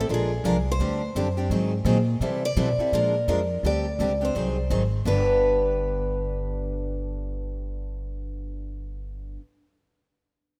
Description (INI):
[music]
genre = acoustic string swing (jazz manouche)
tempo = 169 BPM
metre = 4/4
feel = swing 61% on 8ths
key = G major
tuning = A4 = 440 Hz
[part]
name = picked steel-string acoustic guitar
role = melody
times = 0.0-9.4 s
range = Ab4 to D5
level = -29 LUFS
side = equal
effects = none
[part]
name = picked steel-string acoustic guitar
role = accompaniment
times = 0.0-9.4 s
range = G2 to Bb4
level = -31 LUFS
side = equal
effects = none
[part]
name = upright bass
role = bass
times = 0.0-9.4 s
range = G1 to C3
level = -30 LUFS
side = equal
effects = none
[sound]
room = moderate lush hall reverb, RT60 2.6 s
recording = rough home demo mix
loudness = -25 LUFS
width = mono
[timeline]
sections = 0.0-5.1 A section; 5.1-7.9 B section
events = none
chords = 0.1 Bb7; 0.8 D7sus4; 1.5 Ab7; 2.2 C69; 2.9 Bb7; 3.6 D7sus4; 4.3 Ab7; 5.1 G